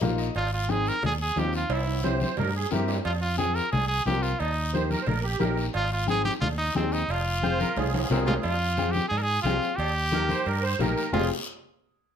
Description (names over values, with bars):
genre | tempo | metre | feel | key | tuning
latin, cumbia | 178 BPM | 4/4 | straight | F minor | A4 = 440 Hz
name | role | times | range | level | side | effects
clear upright piano | accompaniment | 0.0-11.3 s | Bb3 to F5 | -31 LUFS | left 5 dB | none
fingered electric bass | bass | 0.0-11.3 s | F1 to Ab2 | -29 LUFS | right 1 dB | none
congas | percussion | 0.0-11.2 s | none | -31 LUFS | left 3 dB | none
guiro | percussion | 0.0-11.2 s | none | -39 LUFS | left 4 dB | none
timbales and cowbell | percussion | 0.0-11.2 s | none | -35 LUFS | right 5 dB | none
bright trumpet | melody | 0.4-11.3 s | C4 to Bb4 | -28 LUFS | right 1 dB | none
musette accordion | second line | 2.0-11.3 s | G4 to C5 | -31 LUFS | right 5 dB | none
room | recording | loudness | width
light reverb | none | -24 LUFS | side -8 dB against mid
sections
0.0-8.4 A section; 8.4-11.1 B section; 11.1-12.2 C section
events
upright piano fill 0.0-0.4; drum fill 1.7-3.1, 7.8-8.4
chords
0.4 Ab; 1.7 C7; 3.1 Fm; 4.4 Eb; 5.7 Ab; 7.1 Fm; 9.8 Eb; 11.1 Fm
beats
0.02 | 0.35 0.69 1.03 1.36 | 1.70 2.04 2.38 2.71 | 3.05 3.39 3.73 4.06 | 4.40 4.74 5.07 5.41 | 5.75 6.08 6.42 6.76 | 7.10 7.43 7.77 8.11 | 8.45 8.78 9.12 9.46 | 9.79 10.13 10.46 10.80 | 11.14